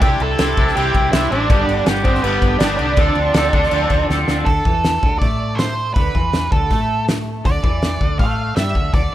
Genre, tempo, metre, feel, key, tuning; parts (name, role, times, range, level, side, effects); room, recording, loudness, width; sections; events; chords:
indie rock; 161 BPM; 4/4; straight; D dorian; A4 = 440 Hz
octave-fuzz lead guitar; melody; 0.0-9.1 s; B3 to F5; -20 LUFS; right 2 dB; distortion, tape echo
twangy electric guitar; riff; 0.0-9.1 s; G2 to A4; -21 LUFS; equal; double-tracked left and right
hollow-body short-scale fingered electric bass; bass; 0.0-9.1 s; G1 to A2; -22 LUFS; left 1 dB
loose indie drum kit; drums; 0.0-9.0 s; crash cymbal, hi-hat, kick drum, snare drum; -18 LUFS; equal
small room ambience; rough home demo mix; -14 LUFS; side -13 dB against mid
0.0-4.5 A section; 4.5-9.1 B section
drum fill 4.1-4.5
0.0 Cadd9; 1.5 G; 3.0 Dm7; 4.5 D5